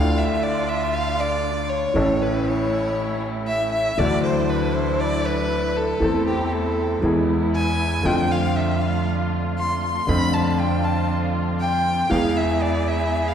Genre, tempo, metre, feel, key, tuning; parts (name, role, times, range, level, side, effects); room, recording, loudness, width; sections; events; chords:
tango; 118 BPM; 4/4; rubato; A minor; A4 = 440 Hz
warm violin; second line; 0.0-13.3 s; G4 to C6; -24 LUFS; left 1 dB; analog delay
clear upright piano; accompaniment; 0.0-13.3 s; A1 to A4; -23 LUFS; left 1 dB
muted chamber string section; stabs; 0.0-13.3 s; F#3 to G#4; -29 LUFS; right 3 dB
upright bass; bass; 0.0-13.3 s; A1 to F2; -26 LUFS; right 1 dB
wet concert hall reverb, RT60 1.8 s; heard from further back in the room; -19 LUFS; side -8 dB against mid
0.0-13.3 A section
violin solo 0.0-13.3
0.0 Dmadd9; 1.9 A; 4.0 Dadd9; 6.0 Am/E; 7.0 E; 8.1 F6; 12.1 E